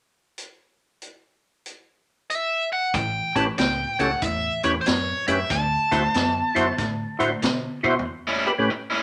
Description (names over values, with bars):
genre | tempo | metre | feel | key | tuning
electric blues shuffle | 94 BPM | 4/4 | swing 65% on 8ths | A mixolydian | A4 = 440 Hz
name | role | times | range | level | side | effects
vintage drum kit | drums | 0.4-8.1 s | hi-hat, kick drum, snare drum, toms | -30 LUFS | equal | none
biting lead guitar | melody | 2.3-7.8 s | C5 to A5 | -27 LUFS | equal | overdrive
raw garage guitar | riff | 2.9-9.0 s | A2 to E4 | -31 LUFS | equal | overdrive
vintage muted fingered electric bass | bass | 2.9-8.0 s | A1 to B2 | -34 LUFS | equal | none
percussive tonewheel organ | accompaniment | 3.4-8.7 s | A2 to C5 | -25 LUFS | equal | overdrive, chorus vibrato, slow rotary speaker
room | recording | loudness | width
moderate studio reverb, RT60 0.7 s | none | -23 LUFS | mono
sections
0.4-2.9 A section; 2.9-8.1 B section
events
drum fill 7.7-8.1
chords
0.4 N.C.; 2.9 A7; 5.5 D7; 8.1 A7